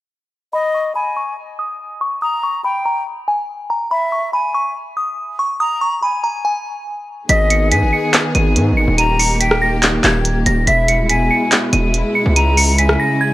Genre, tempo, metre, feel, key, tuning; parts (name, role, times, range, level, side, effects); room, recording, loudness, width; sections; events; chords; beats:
hip hop, trap; 142 BPM; 4/4; half-time; G# harmonic minor; A4 = 440 Hz
delicate synth tine bell; melody; 0.5-13.3 s; G#5 to D#7; -19 LUFS; equal; chorus, low-pass filter
hollow concert flute; second line; 0.5-13.3 s; D#5 to A#5; -22 LUFS; left 2 dB; tape echo
rich symphonic string section; sustained chords; 7.3-13.3 s; B2 to G#4; -19 LUFS; equal
distorted 808-style bass; bass; 7.3-13.0 s; D#1 to G#2; -16 LUFS; equal; distortion
minimal click drum kit; drums; 7.3-13.0 s; handclaps, hi-hat, rim click; -16 LUFS; equal
light reverb; -14 LUFS; side -16 dB against mid
0.5-7.3 A section; 7.3-13.3 B section
filter sweep on synth bell 0.5-7.3
0.5 N.C.; 7.3 G#m; 9.0 D#; 10.7 E; 12.4 C#m
| 0.53 0.95 1.38 1.80 | 2.22 2.65 3.07 3.49 | 3.91 4.33 4.76 5.18 | 5.60 6.03 6.45 6.87 | 7.29 7.71 8.14 8.56 | 8.98 9.40 9.83 10.25 | 10.67 11.10 11.52 11.94 | 12.36 12.79 13.21